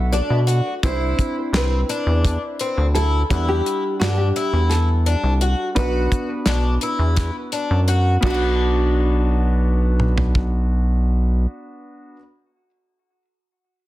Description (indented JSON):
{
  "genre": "progressive instrumental, band music in an uneven meter",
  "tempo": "170 BPM (eighths)",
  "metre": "7/8",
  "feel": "straight",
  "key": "B phrygian",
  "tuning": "A4 = 438 Hz",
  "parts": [
    { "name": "warm concert grand piano", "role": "accompaniment", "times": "0.0-12.2 s", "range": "G3 to F#5", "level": "-29 LUFS", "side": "right 1 dB", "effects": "plate reverb" },
    { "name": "rubbery square bass", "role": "bass", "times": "0.0-11.5 s", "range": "B1 to B2", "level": "-18 LUFS", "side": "equal", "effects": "none" },
    { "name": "nylon-string guitar", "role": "melody", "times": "0.1-12.2 s", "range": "F#4 to D5", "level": "-26 LUFS", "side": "right 1 dB", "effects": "plate reverb, tape echo" },
    { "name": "picked twelve-string acoustic guitar", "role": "arpeggios", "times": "0.1-12.2 s", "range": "B3 to B4", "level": "-26 LUFS", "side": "left 3 dB", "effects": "plate reverb" },
    { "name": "damped 70s drum kit", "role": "drums", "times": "0.1-10.5 s", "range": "crash cymbal, hi-hat, kick drum, snare drum, toms", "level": "-23 LUFS", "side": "equal", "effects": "none" }
  ],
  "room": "light reverb",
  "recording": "dense, heavily limited modern master",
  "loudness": "-17 LUFS",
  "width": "side -16 dB against mid",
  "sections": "0.0-8.2 A section; 8.2-10.7 B section",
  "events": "none",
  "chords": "0.0 Bm7; 0.8 Cmaj7; 3.3 Em7; 5.8 Bm"
}